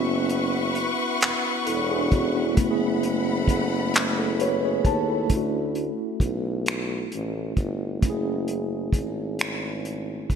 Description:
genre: slow six-eight R&B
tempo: 44 BPM (dotted quarters)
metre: 6/8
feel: straight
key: F# minor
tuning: A4 = 440 Hz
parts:
  - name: mellow tine electric piano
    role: accompaniment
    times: 0.0-10.4 s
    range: A3 to A5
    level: -26 LUFS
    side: right 1 dB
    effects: medium stereo tremolo
  - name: warm symphonic string section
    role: sustained chords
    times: 0.0-5.3 s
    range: A3 to C#6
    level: -28 LUFS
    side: left 3 dB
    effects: none
  - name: warm tuba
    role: bass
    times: 0.0-10.4 s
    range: E1 to D#2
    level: -29 LUFS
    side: equal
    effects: none
  - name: cloth-damped thuddy drum kit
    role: drums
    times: 0.3-10.4 s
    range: finger snaps, handclaps, hi-hat, kick drum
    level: -24 LUFS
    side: equal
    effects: gated reverb
room: light reverb, studio ambience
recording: bright 1980s-style digital production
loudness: -22 LUFS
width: side -7 dB against mid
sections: 0.0-5.3 A section; 5.3-10.4 B section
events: tine electric piano fill 3.9-5.3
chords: 0.0 E13; 2.6 F#m11; 5.3 Dmaj7; 8.0 F#m9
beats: 1.21 | 2.57 3.93 | 5.30 6.66 | 8.02 9.39

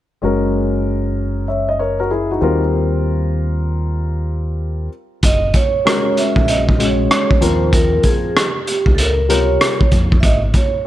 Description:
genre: hip hop, jazz-hop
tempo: 96 BPM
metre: 4/4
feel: swing 65% on 16ths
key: unclear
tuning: A4 = 440 Hz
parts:
  - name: dark grand piano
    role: accompaniment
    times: 0.2-9.8 s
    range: B#2 to E5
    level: -19 LUFS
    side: left 3 dB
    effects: none
  - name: deep dub fingered electric bass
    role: bass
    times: 0.2-10.5 s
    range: F#1 to E#2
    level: -19 LUFS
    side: equal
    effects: none
  - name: vibraphone with medium mallets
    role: melody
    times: 5.2-10.9 s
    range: G4 to E5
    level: -19 LUFS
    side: right 4 dB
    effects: none
  - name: crunchy breakbeat drum kit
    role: drums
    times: 5.2-10.7 s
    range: hi-hat, kick drum, rim click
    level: -15 LUFS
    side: equal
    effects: none
room: small room reverb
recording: none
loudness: -14 LUFS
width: side -14 dB against mid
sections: 0.2-5.2 A section; 5.2-10.9 B section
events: none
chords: 0.2 F#; 2.4 D#add9; 5.2 F#; 7.4 D#9; 10.2 G#sus4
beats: | 0.23 0.85 1.48 2.10 | 2.73 3.35 3.98 4.60 | 5.23 5.85 6.48 7.10 | 7.73 8.35 8.98 9.60 | 10.23 10.85

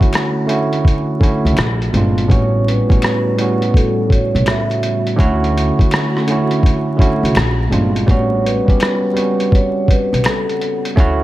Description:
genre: lo-fi hip hop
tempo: 83 BPM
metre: 4/4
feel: swing 65% on 16ths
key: unclear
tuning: A4 = 440 Hz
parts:
  - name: bell-like tine electric piano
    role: accompaniment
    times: 0.0-11.2 s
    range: A2 to G4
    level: -17 LUFS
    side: right 2 dB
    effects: low-pass filter
  - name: warbly tape-like pad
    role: sustained chords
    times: 0.1-11.2 s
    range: C#3 to F#5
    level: -26 LUFS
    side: left 2 dB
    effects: none
  - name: lo-fi sampler-style drum kit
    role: drums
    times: 0.0-11.2 s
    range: hi-hat, kick drum, rim click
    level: -16 LUFS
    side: equal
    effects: none
  - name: finger snaps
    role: percussion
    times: 0.1-10.5 s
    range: none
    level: -32 LUFS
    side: left 4 dB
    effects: none
  - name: upright bass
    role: bass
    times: 1.5-11.2 s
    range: G1 to D2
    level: -17 LUFS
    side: equal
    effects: none
  - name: vibraphone with soft mallets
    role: melody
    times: 2.3-10.8 s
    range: A4 to E5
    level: -21 LUFS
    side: equal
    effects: low-pass filter, analog delay
room: moderate plate reverb, RT60 3.1 s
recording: dreamy mix soaked in reverb, vinyl crackle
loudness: -13 LUFS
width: side -15 dB against mid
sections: 0.0-11.2 A section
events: none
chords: 0.0 Dmaj7; 1.6 Bb9; 2.3 A13; 5.2 Dmaj7; 7.4 Bb9; 8.1 A13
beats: 0.13 0.85 1.57 | 2.30 3.02 3.74 4.46 | 5.19 5.91 6.63 7.36 | 8.08 8.80 9.53 10.25 | 10.97

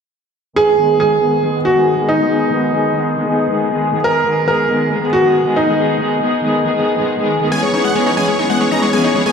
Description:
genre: trance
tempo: 138 BPM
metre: 4/4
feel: straight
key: G# minor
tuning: A4 = 441 Hz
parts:
  - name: clear baby grand piano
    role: second line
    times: 0.6-7.4 s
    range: D#4 to A#4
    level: -15 LUFS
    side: right 1 dB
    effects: tape echo
  - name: warm studio string section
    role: sustained chords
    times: 0.6-9.3 s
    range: D#3 to G#4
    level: -16 LUFS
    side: equal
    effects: vintage 12-bit sampler grit, low-pass filter
  - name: big supersaw lead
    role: melody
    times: 7.5-9.3 s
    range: C#5 to A#5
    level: -18 LUFS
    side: equal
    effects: tape echo
  - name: analog pluck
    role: arpeggios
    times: 7.5-9.3 s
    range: G#3 to D#4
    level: -19 LUFS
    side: left 4 dB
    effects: chorus, tape echo
room: moderate lush hall reverb, RT60 2.4 s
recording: played on a big sound system in a bare room, stone room reverb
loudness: -13 LUFS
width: side -6 dB against mid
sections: 0.6-9.3 A section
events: filter sweep on string section 0.6-9.3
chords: 0.6 G#m; 7.5 C#m7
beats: | 0.56 1.00 1.43 1.87 | 2.30 2.74 3.17 3.61 | 4.04 4.48 4.91 5.35 | 5.78 6.22 6.65 7.09 | 7.52 7.96 8.39 8.82 | 9.26

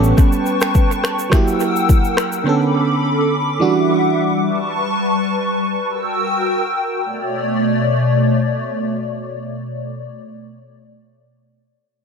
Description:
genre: afrobeats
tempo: 105 BPM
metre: 4/4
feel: swing 55% on 16ths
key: B minor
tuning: A4 = 440 Hz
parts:
  - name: FM electric piano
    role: accompaniment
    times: 0.0-4.5 s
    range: D3 to A4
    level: -18 LUFS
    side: right 5 dB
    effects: chorus, analog delay
  - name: hollow soft pad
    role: sustained chords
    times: 0.0-10.1 s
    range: B2 to E6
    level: -18 LUFS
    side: left 2 dB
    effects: ensemble chorus, sidechain pumping
  - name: afro-pop drum kit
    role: drums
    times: 0.0-2.4 s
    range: finger snaps, kick drum, rim click, shaker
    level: -15 LUFS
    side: left 1 dB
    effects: analog delay
room: light reverb, digital ambience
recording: echo-heavy mix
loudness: -15 LUFS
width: side -6 dB against mid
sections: 0.0-7.0 A section; 7.0-9.3 B section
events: none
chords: 0.0 A9; 1.3 F#7b9; 2.5 Bm9; 3.6 Em9; 4.5 A9; 5.9 F#7b9; 7.0 Bm9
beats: | 0.18 0.75 1.32 1.89 | 2.46 3.04 3.61 4.18 | 4.75 5.32 5.89 6.46 | 7.04 7.61 8.18 8.75

